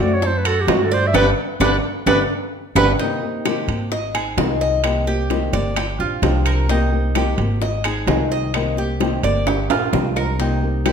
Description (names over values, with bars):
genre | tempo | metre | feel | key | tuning
latin, Cuban son and guajira | 130 BPM | 4/4 | straight | C minor | A4 = 440 Hz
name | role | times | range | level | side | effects
breathy clarinet | melody | 0.0-2.9 s | F#4 to E5 | -21 LUFS | right 2 dB | none
flamenco guitar | accompaniment | 0.0-10.9 s | C3 to Ab4 | -24 LUFS | left 4 dB | none
Cuban tres | arpeggios | 0.0-10.9 s | D4 to Eb5 | -24 LUFS | right 3 dB | none
upright bass | bass | 0.0-10.9 s | G1 to G2 | -22 LUFS | equal | none
bongos | percussion | 0.2-10.9 s | none | -26 LUFS | left 5 dB | none
claves | percussion | 0.5-10.9 s | none | -30 LUFS | left 7 dB | none
timbales | percussion | 0.5-10.9 s | none | -24 LUFS | right 6 dB | none
room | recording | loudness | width
moderate large studio reverb, RT60 1.3 s | none | -16 LUFS | side -7 dB against mid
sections
0.0-3.0 A section; 3.0-10.9 B section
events
clarinet solo 0.0-3.0; band accent 1.1-3.0; drum fill 2.5-3.0, 9.5-10.4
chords
0.0 D7; 1.1 G; 3.0 Cm7; 3.9 Ab; 4.8 Cm7; 5.8 G7sus4; 6.7 Cm7; 7.6 Ab; 8.5 Cm7; 9.5 G7sus4; 10.4 Cm7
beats
0.23 0.69 | 1.15 1.61 2.07 2.53 | 2.99 3.46 3.92 4.38 | 4.84 5.30 5.77 6.23 | 6.69 7.15 7.62 8.08 | 8.54 9.01 9.47 9.93 | 10.40 10.86